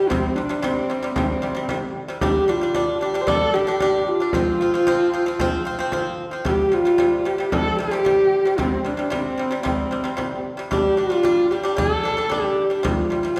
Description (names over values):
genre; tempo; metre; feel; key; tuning
mongolian traditional, Mongolian folk; 113 BPM; 4/4; straight; unclear; A4 = 439 Hz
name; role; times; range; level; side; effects
dark horsehead fiddle; melody; 0.0-13.4 s; C4 to C5; -23 LUFS; equal; none
pipa; arpeggios; 0.0-13.4 s; C3 to D4; -28 LUFS; equal; none
frame drum; percussion; 0.1-13.2 s; none; -30 LUFS; equal; none
room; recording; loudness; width
wet recital hall reverb, RT60 1.6 s; recorded in a church or concert hall; -21 LUFS; mono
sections
0.0-13.4 A section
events
none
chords
0.0 C5; 2.2 G5; 4.3 F5; 6.5 C5; 10.7 G5; 12.8 C5